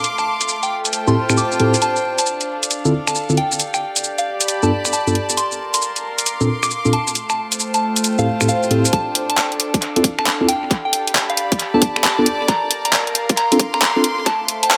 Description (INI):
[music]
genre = UK garage, two-step garage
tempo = 135 BPM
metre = 4/4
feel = swing 65% on 16ths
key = D minor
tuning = A4 = 439 Hz
[part]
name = soft synth bell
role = melody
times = 0.0-14.8 s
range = F5 to D6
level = -25 LUFS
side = equal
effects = chorus, analog delay
[part]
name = garage drum kit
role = drums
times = 0.0-14.8 s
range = finger snaps, handclaps, hi-hat, shaker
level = -21 LUFS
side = equal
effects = overdrive, low-pass filter on snare, low-pass filter on perc, low-pass filter on hats, tape echo
[part]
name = rich chamber string section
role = texture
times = 0.0-14.8 s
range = A3 to D6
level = -25 LUFS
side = equal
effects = sidechain pumping
[part]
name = mellow tine electric piano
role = stabs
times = 1.1-14.0 s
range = G2 to A4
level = -21 LUFS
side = equal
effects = tape echo
[part]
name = electronic kick drum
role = drums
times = 8.9-14.4 s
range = none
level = -20 LUFS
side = equal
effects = overdrive, high-pass filter on kick
[sound]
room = wet spring reverb, RT60 2.0 s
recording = echo-heavy mix, high-pass filter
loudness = -18 LUFS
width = mono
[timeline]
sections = 0.0-8.9 A section; 8.9-14.8 B section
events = build-up 8.9-14.8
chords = 0.0 Fmaj9/A; 1.8 Dm7; 3.6 G9; 5.4 Bbmaj9; 7.2 Fmaj9/A; 8.9 Dm7; 10.7 G9; 12.5 Bbmaj9; 14.3 Fadd9/A